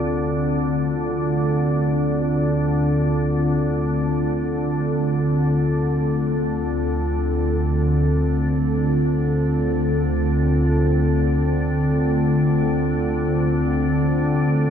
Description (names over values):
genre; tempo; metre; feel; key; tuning
dark ambient drone; free time; none; none; D minor; A4 = 438 Hz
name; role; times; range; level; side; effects
dark analog pad; sustained chords; 0.0-14.7 s; D3 to A4; -21 LUFS; equal; chorus
organ-like drone; drone; 0.0-14.7 s; D2 to D3; -21 LUFS; equal; ensemble chorus, built-in reverb
room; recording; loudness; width
wet huge ambient reverb, RT60 7.9 s; dark, warm production; -18 LUFS; side -8 dB against mid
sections
0.0-14.7 A section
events
none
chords
0.0 Dm